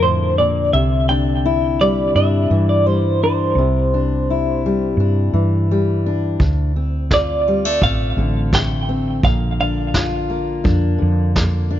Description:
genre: acoustic folk duo or small band.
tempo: 85 BPM.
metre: 4/4.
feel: straight.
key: unclear.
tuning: A4 = 440 Hz.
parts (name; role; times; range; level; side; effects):
semi-hollow electric guitar; melody; 0.0-11.7 s; C5 to G5; -20 LUFS; right 1 dB; tremolo, tape echo.
fingerpicked steel-string acoustic guitar; accompaniment; 0.0-11.8 s; D2 to F4; -20 LUFS; left 3 dB; none.
woody fretless electric bass; bass; 0.0-11.8 s; A1 to G2; -19 LUFS; right 1 dB; none.
vintage brush drum kit; drums; 6.4-11.5 s; kick drum, snare drum; -20 LUFS; right 1 dB; none.
room: little or no reverb.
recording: nothing above 7.5 kHz.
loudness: -15 LUFS.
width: side -11 dB against mid.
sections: 0.0-11.8 A section.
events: none.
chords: 0.0 Bb; 0.7 Cadd9; 6.4 Dm7; 9.2 Bb.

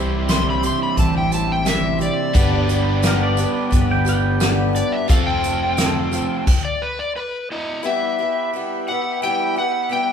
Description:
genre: folk rock and heartland rock.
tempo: 87 BPM.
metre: 4/4.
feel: straight.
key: G mixolydian.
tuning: A4 = 439 Hz.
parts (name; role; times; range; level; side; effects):
picked swing-style acoustic guitar; accompaniment; 0.0-10.1 s; G2 to A4; -25 LUFS; left 3 dB; none.
accordion; sustained chords; 0.0-10.1 s; D4 to C5; -30 LUFS; right 3 dB; none.
overdriven electric guitar; riff; 0.0-6.5 s; C3 to C5; -23 LUFS; right 2 dB; none.
picked electric bass; bass; 0.0-6.2 s; F1 to C2; -22 LUFS; equal; none.
overdriven slide guitar; melody; 0.3-10.1 s; E4 to C6; -22 LUFS; left 1 dB; none.
soft brush drum kit; drums; 0.3-6.6 s; crash cymbal, hi-hat, kick drum, snare drum; -20 LUFS; equal; none.
tambourine; percussion; 0.3-6.3 s; none; -36 LUFS; right 6 dB; none.
twangy electric guitar; second line; 3.1-4.6 s; Bb4 to G5; -26 LUFS; right 2 dB; none.
room: moderate large studio reverb, RT60 0.9 s.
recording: band playing live in one room, lossy compression artefacts.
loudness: -17 LUFS.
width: side -7 dB against mid.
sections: 0.0-7.8 A section; 7.8-10.1 B section.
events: electric slide guitar solo 0.0-7.8; stop 6.5-7.8.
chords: 0.0 C; 2.4 G; 5.1 F; 6.5 N.C.; 7.8 Em.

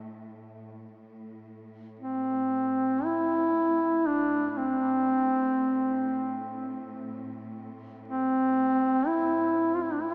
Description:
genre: caucasian folk, Caucasian lament.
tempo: 59 BPM.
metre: 3/4.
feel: rubato.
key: A minor.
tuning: A4 = 440 Hz.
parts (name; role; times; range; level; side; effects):
warm studio string section; drone; 0.0-10.1 s; A2; -45 LUFS; equal; none.
mellow duduk; melody; 2.0-10.1 s; C4 to F4; -28 LUFS; equal; analog delay.
room: wet cathedral reverb, RT60 5.3 s.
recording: dreamy mix soaked in reverb, small speaker sound.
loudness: -27 LUFS.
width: mono.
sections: 1.0-10.1 A section.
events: none.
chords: none.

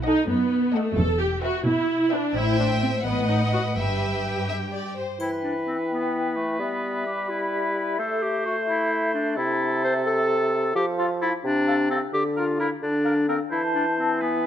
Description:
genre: cinematic, playful, whimsical film cue.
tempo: 86 BPM (dotted quarters).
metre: 6/8.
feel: straight.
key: E minor, A minor from 10.8 s.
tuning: A4 = 440 Hz.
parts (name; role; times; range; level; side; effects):
rich symphonic cello section; bass; 0.0-5.0 s; E2 to B2; -27 LUFS; right 1 dB; none.
rich chamber violin section; melody; 0.1-5.0 s; F#5 to G5; -33 LUFS; equal; none.
rich chamber violin section; second line; 0.1-5.2 s; A4 to E5; -30 LUFS; left 4 dB; none.
rich studio viola section; accompaniment; 0.1-4.9 s; A3 to A4; -24 LUFS; right 1 dB; none.
rich chamber double bass section; bass; 1.0-4.2 s; E1 to A1; -31 LUFS; right 1 dB; none.
bright clarinet; second line; 5.2-14.5 s; A3 to C5; -26 LUFS; left 1 dB; none.
clear oboe; second line; 5.2-14.5 s; A4 to C5; -31 LUFS; right 1 dB; none.
mellow hollow large flute ensemble; second line; 5.2-14.5 s; E5 to A5; -32 LUFS; left 2 dB; none.
mellow bassoon; accompaniment; 5.2-14.5 s; C3 to A3; -26 LUFS; equal; none.
triangle; percussion; 5.2-6.1 s; none; -52 LUFS; left 6 dB; none.
room: light reverb.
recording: close, detailed microphones.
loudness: -22 LUFS.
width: side -10 dB against mid.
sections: 0.0-5.2 A section; 5.2-14.5 A section.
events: none.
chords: 0.0 B7; 1.0 Em; 2.4 Am7; 3.1 B7/A; 3.8 Em/G; 5.2 Em; 6.6 Em/G; 8.0 Am; 9.4 Am/C; 10.8 F; 12.1 Bb/D; 13.5 Am/E.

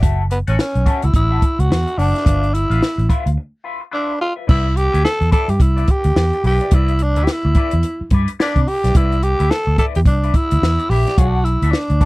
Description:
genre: funk.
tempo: 108 BPM.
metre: 4/4.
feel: swing 60% on 16ths.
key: unclear.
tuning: A4 = 441 Hz.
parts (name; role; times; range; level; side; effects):
clean electric guitar; accompaniment; 0.0-12.1 s; E4 to F#5; -27 LUFS; left 5 dB; wah.
vintage muted fingered electric bass; bass; 0.0-12.0 s; F#1 to C3; -16 LUFS; equal; none.
compact cocktail drum kit; drums; 0.0-12.1 s; crash cymbal, hi-hat, kick drum, snare drum; -16 LUFS; equal; none.
growling tenor saxophone; melody; 0.3-12.1 s; B3 to A4; -20 LUFS; equal; none.
room: little or no reverb.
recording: dry, close 1970s-style studio recording.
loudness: -14 LUFS.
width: side -21 dB against mid.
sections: 0.0-4.5 A section; 4.5-12.1 B section.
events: break 3.4-4.5.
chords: 0.0 F#m7; 2.3 G13; 4.5 Cmaj9; 11.2 Bm7.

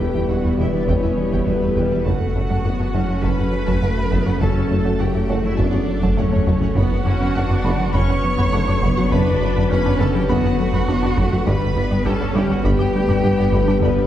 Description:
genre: cinematic, hybrid orchestral and electronic film score.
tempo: 102 BPM.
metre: 4/4.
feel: straight.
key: unclear.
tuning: A4 = 440 Hz.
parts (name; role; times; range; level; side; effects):
bright cello; melody; 0.0-14.1 s; B3 to C#5; -28 LUFS; right 2 dB; digital delay.
warm symphonic violin section; melody; 0.0-13.9 s; B4 to B5; -38 LUFS; left 3 dB; none.
rich studio violin section; second line; 0.0-14.1 s; B4 to C#6; -31 LUFS; equal; none.
rich symphonic viola section; accompaniment; 0.0-14.1 s; G3 to D4; -27 LUFS; equal; none.
airy breathy pad; sustained chords; 0.0-14.1 s; D3 to B4; -28 LUFS; left 2 dB; none.
dark trombone section; sustained chords; 0.0-14.1 s; B2 to G3; -27 LUFS; equal; none.
warm French horn section; sustained chords; 0.0-14.1 s; A3 to B4; -28 LUFS; left 4 dB; none.
glassy wavetable pluck; arpeggios; 0.0-13.9 s; E3 to B4; -29 LUFS; right 2 dB; none.
rubbery square bass; riff; 0.0-14.1 s; E2 to G3; -24 LUFS; left 1 dB; none.
clear symphonic cello section; bass; 0.0-13.9 s; E2 to G2; -27 LUFS; right 2 dB; none.
pure sine sub bass; bass; 0.0-14.1 s; E1 to G1; -27 LUFS; equal; none.
rich studio double bass section; bass; 0.0-13.9 s; E1 to G1; -28 LUFS; right 2 dB; none.
warm tuba; bass; 0.0-13.9 s; E1 to G1; -29 LUFS; right 1 dB; none.
taiko ensemble; drums; 0.9-14.1 s; none; -25 LUFS; equal; none.
room: wet scoring stage reverb, RT60 1.7 s.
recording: heard from further back in the room.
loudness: -16 LUFS.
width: side -11 dB against mid.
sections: 0.0-14.1 A section.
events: drum fill 6.2-6.8.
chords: 0.0 Em; 2.1 F#m; 6.8 Bm/F#; 11.5 G.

